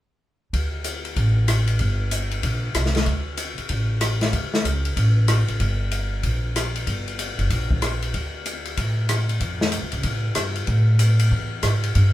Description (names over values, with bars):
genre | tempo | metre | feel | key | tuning
jazz, small-group swing and bop | 189 BPM | 4/4 | swing 64% on 8ths | D minor | A4 = 441 Hz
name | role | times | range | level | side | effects
upright bass | bass | 0.5-12.1 s | F#1 to A2 | -21 LUFS | equal | none
open jazz drum kit | drums | 0.5-12.0 s | hi-hat, kick drum, ride cymbal, rim click, snare drum | -25 LUFS | left 2 dB | none
room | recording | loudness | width
moderate studio reverb, RT60 0.5 s | band playing live in one room | -20 LUFS | side -14 dB against mid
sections
0.5-12.1 A section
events
none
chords
none